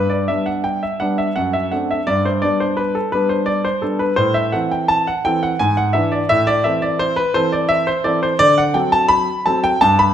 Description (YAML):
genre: classical-period piano sonatina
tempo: 85 BPM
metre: 3/4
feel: straight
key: G major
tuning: A4 = 440 Hz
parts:
  - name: clear grand piano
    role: solo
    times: 0.0-10.1 s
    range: F#2 to B5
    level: -15 LUFS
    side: equal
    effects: none
room: moderate recital hall reverb, RT60 1.6 s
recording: minimal, uncompressed stereo recording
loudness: -15 LUFS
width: side -10 dB against mid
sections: 0.0-10.1 A section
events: none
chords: 0.0 G; 1.4 D7/F#; 2.1 G; 4.2 Am; 5.6 E7/G#; 6.3 Am; 8.4 D7